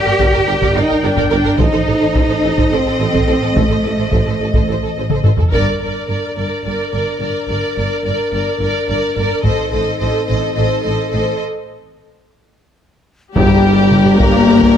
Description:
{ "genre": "cinematic, epic orchestral film score", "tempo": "214 BPM (eighths)", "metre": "7/8", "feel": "straight", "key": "G minor", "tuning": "A4 = 438 Hz", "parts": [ { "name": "rich symphonic violin section", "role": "melody", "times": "0.0-14.8 s", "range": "G4 to G5", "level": "-23 LUFS", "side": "left 3 dB", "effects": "none" }, { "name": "warm symphonic viola section", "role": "accompaniment", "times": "0.0-14.8 s", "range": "G4 to Bb4", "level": "-22 LUFS", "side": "right 2 dB", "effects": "none" }, { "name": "dark French horn section", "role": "sustained chords", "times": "0.0-14.8 s", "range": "G3 to D5", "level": "-19 LUFS", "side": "left 3 dB", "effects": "none" }, { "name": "warm symphonic cello section", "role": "bass", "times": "0.0-14.8 s", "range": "G2 to G4", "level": "-20 LUFS", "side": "right 1 dB", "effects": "none" }, { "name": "warm symphonic violin section", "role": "second line", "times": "0.1-14.8 s", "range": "A4 to D5", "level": "-26 LUFS", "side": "left 1 dB", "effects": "none" }, { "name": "warm symphonic double bass section", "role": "bass", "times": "0.1-14.8 s", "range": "G1 to A1", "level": "-22 LUFS", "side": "right 2 dB", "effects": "none" }, { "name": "warm tuba", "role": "bass", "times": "0.2-5.3, 13.4-14.8 s", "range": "G1 to A1", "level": "-22 LUFS", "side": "right 3 dB", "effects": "none" }, { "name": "taiko ensemble", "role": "drums", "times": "0.2-14.8 s", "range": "none", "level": "-17 LUFS", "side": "equal", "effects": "none" }, { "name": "hollow concert flute", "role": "second line", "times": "13.4-14.8 s", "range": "G5 to Bb5", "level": "-24 LUFS", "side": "left 3 dB", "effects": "none" }, { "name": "timpani", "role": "percussion", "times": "13.4-14.2 s", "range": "G2", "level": "-22 LUFS", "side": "equal", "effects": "none" } ], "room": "moderate recital hall reverb, RT60 1.5 s", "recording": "none", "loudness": "-13 LUFS", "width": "side -9 dB against mid", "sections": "0.0-5.5 A section; 5.5-13.4 B section; 13.4-14.8 C section", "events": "drum fill 5.1-5.5, 12.9-13.4; band accent 5.5-6.1; break 11.4-13.4", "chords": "0.0 Gm; 1.6 Adim; 5.5 Gm; 9.4 Adim; 13.4 Gm", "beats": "0.20 0.48 0.76 1.04 1.32 | 1.60 1.88 2.16 2.44 2.72 3.00 3.28 | 3.56 3.84 4.12 4.41 4.68 4.96 5.25 | 5.53 5.81 6.09 6.37 6.65 6.93 7.21 | 7.49 7.77 8.05 8.33 8.61 8.89 9.17 | 9.45 9.73 10.01 10.29 10.56 10.85 11.12 | 11.40 11.68 11.96 12.24 12.52 12.80 13.08 | 13.36 13.64 13.92 14.20 14.48 14.76" }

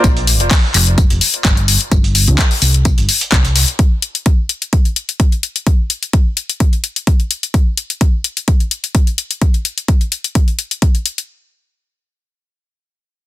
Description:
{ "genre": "piano house", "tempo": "128 BPM", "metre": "4/4", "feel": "swing 54% on 16ths", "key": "unclear", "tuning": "A4 = 440 Hz", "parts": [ { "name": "hollow-body short-scale fingered electric bass", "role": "bass", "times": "0.0-3.6 s", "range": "F1 to D2", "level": "-14 LUFS", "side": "equal", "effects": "sidechain pumping, low-pass filter" }, { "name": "breakbeat sampler-style drum kit", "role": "drums", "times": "0.0-3.7 s", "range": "hi-hat, snare drum, tambourine", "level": "-23 LUFS", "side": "equal", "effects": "high-pass filter on snare, high-pass filter on hats, high-pass filter on perc" }, { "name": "electronic kick drum", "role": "drums", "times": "0.0-10.9 s", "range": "none", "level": "-12 LUFS", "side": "equal", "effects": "overdrive" }, { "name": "house drum kit", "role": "drums", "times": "0.0-11.3 s", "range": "handclaps, hi-hat", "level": "-17 LUFS", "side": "left 4 dB", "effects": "overdrive" } ], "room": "little or no reverb", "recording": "dense, heavily limited modern master", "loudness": "-12 LUFS", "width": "side -14 dB against mid", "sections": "0.0-11.3 A section; 11.3-13.3 B section", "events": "filter sweep on fingered electric bass 0.0-3.8", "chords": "none", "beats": "| 0.04 0.51 0.98 1.45 | 1.92 2.38 2.85 3.32 | 3.79 4.26 4.73 5.20 | 5.67 6.13 6.60 7.07 | 7.54 8.01 8.48 8.95 | 9.41 9.88 10.35 10.82" }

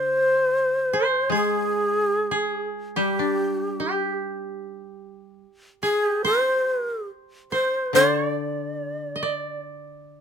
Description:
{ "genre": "japanese traditional, Japanese chamber music", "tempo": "72 BPM", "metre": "4/4", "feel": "rubato", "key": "unclear", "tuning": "A4 = 440 Hz", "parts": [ { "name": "breathy bright long shakuhachi", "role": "melody", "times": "0.0-9.6 s", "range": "G4 to D5", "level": "-22 LUFS", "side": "equal", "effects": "none" }, { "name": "koto", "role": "second line", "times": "0.0-10.2 s", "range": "G4 to Eb5", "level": "-27 LUFS", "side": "right 3 dB", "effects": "none" }, { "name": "koto", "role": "accompaniment", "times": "0.0-10.2 s", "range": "D3 to D4", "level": "-30 LUFS", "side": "left 4 dB", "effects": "none" } ], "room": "light reverb", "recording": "close, detailed microphones", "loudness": "-21 LUFS", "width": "side -7 dB against mid", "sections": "0.0-10.2 A section", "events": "none", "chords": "none", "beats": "0.50 | 1.32 2.15 2.97 3.78 | 4.60 5.42 6.25 7.09 | 7.95 8.80 9.65" }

